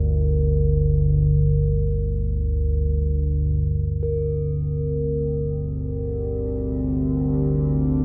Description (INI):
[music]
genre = dark ambient drone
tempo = free time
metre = none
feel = none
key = G minor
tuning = A4 = 438 Hz
[part]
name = analog drone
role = drone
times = 0.0-8.0 s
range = G1 to D2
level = -23 LUFS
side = equal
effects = lush chorus
[part]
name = bronze singing bowl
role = texture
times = 0.0-8.0 s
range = Bb4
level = -33 LUFS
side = equal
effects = none
[part]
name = dark analog pad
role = sustained chords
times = 4.0-8.0 s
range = C4 to Bb4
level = -30 LUFS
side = equal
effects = chorus
[sound]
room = wet cathedral reverb, RT60 7.4 s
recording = none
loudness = -23 LUFS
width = mono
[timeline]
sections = 0.0-4.0 A section; 4.0-8.0 B section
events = filter sweep on synth drone 0.0-4.0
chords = 0.0 Bb/G; 4.0 Gm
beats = free time